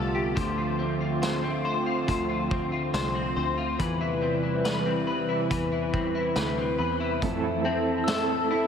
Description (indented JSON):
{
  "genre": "dream pop",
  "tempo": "70 BPM",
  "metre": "4/4",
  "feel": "straight",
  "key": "F lydian",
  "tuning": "A4 = 440 Hz",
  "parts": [
    { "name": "hollow soft pad", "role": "sustained chords", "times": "0.0-8.7 s", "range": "C3 to A5", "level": "-29 LUFS", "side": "right 2 dB", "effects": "chorus, shimmer reverb" },
    { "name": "electric guitar at the edge of break-up", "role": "arpeggios", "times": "0.0-8.7 s", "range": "D3 to C5", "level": "-29 LUFS", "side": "left 5 dB", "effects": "ensemble chorus, tape echo, shimmer reverb" },
    { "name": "picked electric bass", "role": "bass", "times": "0.0-8.7 s", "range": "C2 to F2", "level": "-34 LUFS", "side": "right 1 dB", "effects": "none" },
    { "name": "vintage drum kit", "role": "drums", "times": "0.4-8.3 s", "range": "hi-hat, kick drum, snare drum, tambourine", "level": "-33 LUFS", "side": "right 1 dB", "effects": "none" },
    { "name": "mellow electric guitar", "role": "accompaniment", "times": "7.2-8.7 s", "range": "F3 to A4", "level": "-28 LUFS", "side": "right 4 dB", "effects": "tremolo, ensemble chorus" },
    { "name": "glockenspiel with soft plastic mallets", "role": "texture", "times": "8.0-8.7 s", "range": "E6", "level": "-34 LUFS", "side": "left 4 dB", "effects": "tape echo, shimmer reverb" }
  ],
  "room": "moderate huge ambient reverb, RT60 6.3 s",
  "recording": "none",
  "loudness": "-24 LUFS",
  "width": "side -7 dB against mid",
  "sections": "0.0-7.2 A section; 7.2-8.7 B section",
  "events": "none",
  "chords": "0.4 Dm7; 3.8 Cmaj7/E; 7.2 Fmaj7",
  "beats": "| 0.37 1.22 2.08 2.94 | 3.79 4.65 5.51 6.37 | 7.22 8.08"
}